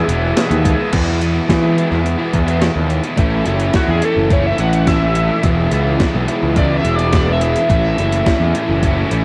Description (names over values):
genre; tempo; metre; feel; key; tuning
indie rock; 106 BPM; 4/4; straight; E major; A4 = 444 Hz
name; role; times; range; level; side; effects
overdriven synth lead; melody; 0.0-0.4, 3.8-8.2 s; F#4 to F#5; -24 LUFS; equal; phaser, cassette tape, tape echo
overdriven combo organ; sustained chords; 0.0-0.9 s; B4 to D#6; -28 LUFS; equal; cassette tape
biting overdriven guitar; riff; 0.0-9.2 s; E2 to E4; -24 LUFS; equal; cassette tape
overdriven semi-hollow guitar; riff; 0.0-9.2 s; A2 to E4; -23 LUFS; equal; analog chorus, cassette tape, tape echo
fuzz picked electric bass; bass; 0.1-9.2 s; E1 to E3; -20 LUFS; equal; overdrive
gated 80s digital drum machine; drums; 0.1-9.2 s; crash cymbal, hi-hat, kick drum, snare drum; -20 LUFS; equal; gated reverb, gated reverb snare, cassette tape
room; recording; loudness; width
light reverb; home recording on cassette; -15 LUFS; mono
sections
0.9-3.2 A section; 3.2-9.2 B section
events
analog synth lead solo 3.2-9.2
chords
0.0 Emaj7; 0.9 E; 3.2 A; 5.4 E; 7.7 A